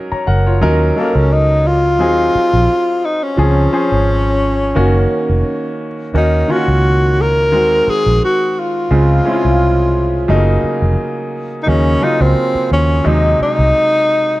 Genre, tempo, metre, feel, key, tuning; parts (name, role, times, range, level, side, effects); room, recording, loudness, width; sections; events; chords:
lush 1970s-style soul; 87 BPM; 4/4; swing 54% on 16ths; Eb dorian; A4 = 440 Hz
clear concert grand piano; accompaniment; 0.0-14.4 s; C3 to Bb5; -18 LUFS; equal
vintage muted fingered electric bass; bass; 0.1-13.7 s; F1 to Eb2; -14 LUFS; equal
breathy tenor saxophone; melody; 1.0-14.4 s; Bb3 to Bb4; -15 LUFS; left 1 dB; tape echo
light reverb, small room reverb; -11 LUFS; side -17 dB against mid
0.0-14.4 A section
0.0 Gb6; 0.6 Ebm7; 2.0 Ab7; 3.4 Dbmaj7; 4.8 Gb6; 6.1 Ebm7; 7.5 Ab7; 8.9 Dbmaj7; 10.3 Gb6; 11.7 Ebm7; 13.1 Ab7